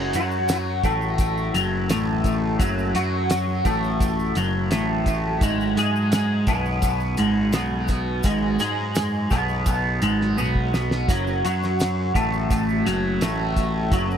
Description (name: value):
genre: psychedelic rock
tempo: 85 BPM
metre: 4/4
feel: straight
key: unclear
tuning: A4 = 440 Hz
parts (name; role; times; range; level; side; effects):
- twangy electric guitar; riff; 0.0-14.2 s; F#2 to G#4; -22 LUFS; equal; flanger, analog delay
- fuzz picked electric bass; bass; 0.0-14.2 s; F#1 to G#2; -26 LUFS; equal; overdrive
- tanpura; drone; 0.0-14.2 s; F#2 to F#3; -35 LUFS; right 1 dB; none
- cloth-damped thuddy drum kit; drums; 0.1-14.1 s; hi-hat, kick drum, snare drum, toms; -25 LUFS; equal; analog delay
- tube shaker; percussion; 0.1-14.2 s; none; -41 LUFS; right 9 dB; analog delay
room: little or no reverb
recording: echo-heavy mix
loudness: -20 LUFS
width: side -8 dB against mid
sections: 0.0-14.2 A section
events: drum fill 10.4-11.1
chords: 0.0 F#5; 5.4 G#m; 11.1 F#5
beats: 0.49 1.20 1.90 | 2.60 3.31 4.01 4.71 | 5.42 6.12 6.83 7.54 | 8.25 8.96 9.67 10.38 | 11.09 11.79 12.50 13.21 | 13.92